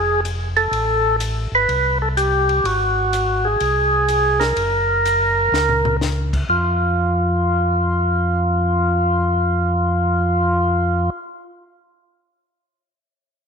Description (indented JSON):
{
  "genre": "soul jazz organ trio",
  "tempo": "125 BPM",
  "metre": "4/4",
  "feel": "swing 66% on 8ths",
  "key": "unclear",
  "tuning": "A4 = 440 Hz",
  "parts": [
    { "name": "percussive tonewheel organ", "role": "melody", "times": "0.0-11.1 s", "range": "F4 to B4", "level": "-18 LUFS", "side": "equal", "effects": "slow rotary speaker" },
    { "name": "mellow tonewheel organ", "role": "bass", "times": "0.0-11.1 s", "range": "F1 to F2", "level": "-21 LUFS", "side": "equal", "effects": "slow rotary speaker" },
    { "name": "compact cocktail drum kit", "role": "drums", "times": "0.2-6.4 s", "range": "crash cymbal, hi-hat, kick drum, ride cymbal, snare drum, toms", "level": "-29 LUFS", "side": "left 5 dB", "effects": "none" }
  ],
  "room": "moderate echo chamber reverb, RT60 1.7 s, small room ambience",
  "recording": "1960s-style stereo",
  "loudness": "-16 LUFS",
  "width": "side -6 dB against mid",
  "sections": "0.0-6.5 A section; 6.5-10.3 B section",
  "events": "drum fill 5.5-6.0",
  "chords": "0.0 N.C.; 0.7 Am7; 2.6 Ab7; 4.6 Gb; 6.5 N.C.",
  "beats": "0.24 | 0.72 1.20 1.68 2.16 | 2.64 3.12 3.60 4.08 | 4.57 5.05 5.53 6.01 | 6.49 6.97 7.45 7.93 | 8.41 8.90 9.38 9.86"
}